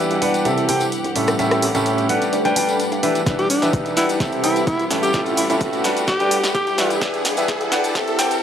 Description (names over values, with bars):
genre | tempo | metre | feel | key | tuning
piano house | 128 BPM | 4/4 | straight | E minor | A4 = 440 Hz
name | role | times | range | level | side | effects
rich chamber violin section | sustained chords | 0.0-8.4 s | G4 to F#5 | -30 LUFS | left 1 dB | sidechain pumping
clear grand piano | riff | 0.0-8.3 s | A2 to G5 | -20 LUFS | equal | sidechain pumping, low-pass filter, tape echo
fingered electric bass | bass | 0.0-8.3 s | E1 to G2 | -32 LUFS | equal | none
riser | sound effects | 0.0-8.4 s | none | -29 LUFS | equal | none
deep dark ambient pad | texture | 0.0-8.4 s | G3 to B5 | -26 LUFS | equal | chorus, built-in reverb, sidechain pumping
punchy analog drum machine | drums | 0.1-8.4 s | hi-hat, rim click, shaker, snare drum | -24 LUFS | equal | overdrive, high-pass filter on hats, studio ambience, high-pass filter on snare, high-pass filter on perc
tambourine | percussion | 0.1-8.4 s | none | -34 LUFS | left 4 dB | none
electronic kick drum | drums | 3.3-8.1 s | none | -25 LUFS | equal | overdrive, studio ambience
breathy alto saxophone | melody | 3.4-7.0 s | D4 to G4 | -22 LUFS | equal | tape echo
room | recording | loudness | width
light reverb, small room reverb | dry, gritty hardware recording, high-pass filter | -16 LUFS | side -9 dB against mid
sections
0.0-8.4 A section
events
build-up 0.0-8.4; riser 0.0-8.4; filter sweep 0.0-8.4; drum fill 3.3-8.4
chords
0.5 C6; 1.2 A7; 2.1 Em7; 4.2 C6; 4.9 A7; 5.8 Em7